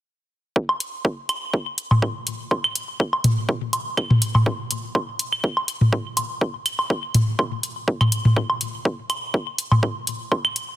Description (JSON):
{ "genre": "techno", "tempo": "123 BPM", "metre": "4/4", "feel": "swing 54% on 16ths", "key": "none", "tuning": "none", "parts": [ { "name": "electronic kick drum", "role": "drums", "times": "0.6-10.4 s", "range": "none", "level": "-22 LUFS", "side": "equal", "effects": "overdrive, high-pass filter on kick" }, { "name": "electronic woodblock, claves and toms", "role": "percussion", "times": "0.7-10.5 s", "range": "none", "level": "-21 LUFS", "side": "equal", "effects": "ping-pong delay" }, { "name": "electronic hi-hat", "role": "drums", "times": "0.8-10.7 s", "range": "none", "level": "-27 LUFS", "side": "left 1 dB", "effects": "overdrive" } ], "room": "light reverb", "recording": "dense, heavily limited modern master", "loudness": "-20 LUFS", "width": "side -14 dB against mid", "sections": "0.6-10.8 A section", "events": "none", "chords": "none" }